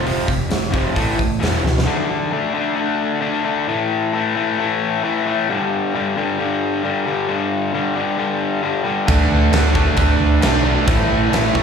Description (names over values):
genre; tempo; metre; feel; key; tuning
hard rock; 133 BPM; 4/4; straight; unclear; A4 = 442 Hz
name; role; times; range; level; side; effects
cranked stack guitar; riff; 0.0-1.8, 9.1-11.6 s; E2 to D4; -21 LUFS; right 13 dB; overdrive, slapback echo
overdriven semi-hollow guitar; riff; 0.0-11.6 s; E2 to D4; -19 LUFS; left 5 dB; slapback echo
hollow-body short-scale fingered electric bass; bass; 0.1-1.8, 9.1-11.6 s; E1 to D2; -20 LUFS; equal; none
big rock drum kit; drums; 0.1-1.9, 9.1-11.6 s; crash cymbal, hi-hat, kick drum, snare drum; -20 LUFS; right 1 dB; none
room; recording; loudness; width
small room reverb; live gig heard through the venue's PA, club reverb; -16 LUFS; side -6 dB against mid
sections
0.0-1.9 A section; 1.9-11.6 B section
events
drum fill 1.6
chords
0.0 F5; 1.0 A5; 1.4 E5; 1.9 D5; 3.7 A5; 5.5 G5; 9.1 D5; 10.9 A5